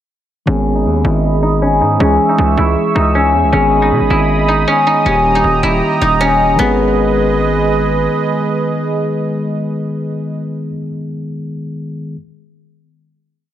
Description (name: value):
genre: hip hop, trap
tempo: 157 BPM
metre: 4/4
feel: half-time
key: G# harmonic minor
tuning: A4 = 440 Hz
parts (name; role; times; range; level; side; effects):
- guzheng; melody; 0.5-9.7 s; B3 to E4; -14 LUFS; left 1 dB; low-pass filter, tape echo
- mellow tine electric piano; accompaniment; 0.5-12.2 s; D#3 to G#4; -18 LUFS; left 1 dB; low-pass filter
- warm analog pad; sustained chords; 0.5-10.4 s; G#3 to E6; -18 LUFS; right 4 dB; chorus, low-pass filter
- distorted 808-style bass; bass; 0.5-8.1 s; D#1 to B2; -17 LUFS; equal; distortion
room: light reverb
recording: none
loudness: -12 LUFS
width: side -11 dB against mid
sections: 0.5-6.6 breakdown; 6.6-9.6 final chord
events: filter sweep 0.5-6.6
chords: 0.5 G#m; 2.0 C#m; 3.5 G#m; 5.1 D#; 6.6 G#m